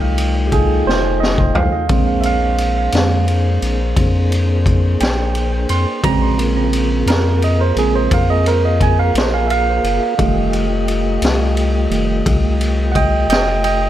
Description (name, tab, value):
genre	slow blues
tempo	58 BPM (dotted quarters)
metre	12/8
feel	straight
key	unclear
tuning	A4 = 445 Hz
part	barky tine electric piano	accompaniment	0.0-13.9 s	Db3 to C6	-19 LUFS	right 6 dB	overdrive, analog delay
part	mellow tonewheel organ	sustained chords	0.0-13.9 s	A3 to G5	-22 LUFS	left 1 dB	slow rotary speaker
part	warm sub bass	bass	0.0-13.9 s	F1 to F2	-17 LUFS	left 1 dB	none
part	raw garage drum kit	drums	0.2-13.8 s	kick drum, ride cymbal, snare drum, toms	-20 LUFS	left 1 dB	none
room	light reverb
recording	echo-heavy mix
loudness	-13 LUFS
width	side -12 dB against mid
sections	0.0-13.9 A section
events	tine electric piano solo 0.0-13.9; drum fill 0.9-1.9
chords	0.0 F9; 1.9 Bb9; 6.0 Bbm7; 10.2 F9